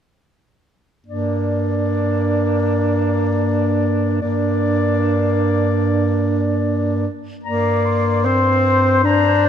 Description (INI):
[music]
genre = classical, lyrical piece for single-reed quartet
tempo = 67-79 BPM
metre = 4/4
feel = rubato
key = G minor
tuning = A4 = 440 Hz
[part]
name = clear clarinet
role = melody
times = 1.1-9.5 s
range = D5 to C6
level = -24 LUFS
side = left 9 dB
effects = none
[part]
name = clear alto saxophone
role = second line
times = 1.1-9.5 s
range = D4 to D5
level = -22 LUFS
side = right 8 dB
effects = none
[part]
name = clear tenor saxophone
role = accompaniment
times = 1.1-9.5 s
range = Bb3 to D4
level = -20 LUFS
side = left 4 dB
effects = none
[part]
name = mellow bass clarinet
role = bass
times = 1.1-9.5 s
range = G2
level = -20 LUFS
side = right 1 dB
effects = none
[sound]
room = moderate concert hall reverb, RT60 2.2 s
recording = none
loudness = -16 LUFS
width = side -8 dB against mid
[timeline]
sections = 1.1-7.4 A section; 7.4-9.5 B section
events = none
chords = 1.1 Gm